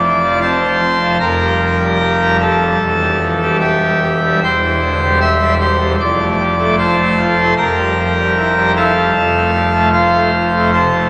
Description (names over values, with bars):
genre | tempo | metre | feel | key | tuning
classical, chorale-style piece for pipe organ | 76 BPM | 4/4 | straight | F major | A4 = 435 Hz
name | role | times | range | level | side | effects
pipe organ, full organ | solo | 0.0-11.1 s | E1 to E6 | -14 LUFS | equal | none
room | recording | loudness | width
wet church reverb, RT60 3.6 s | none | -14 LUFS | mono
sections
0.0-11.1 A section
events
none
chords
0.0 F; 1.2 Gm7/F; 2.8 C/E; 6.0 F; 7.6 Gm13/F; 9.1 F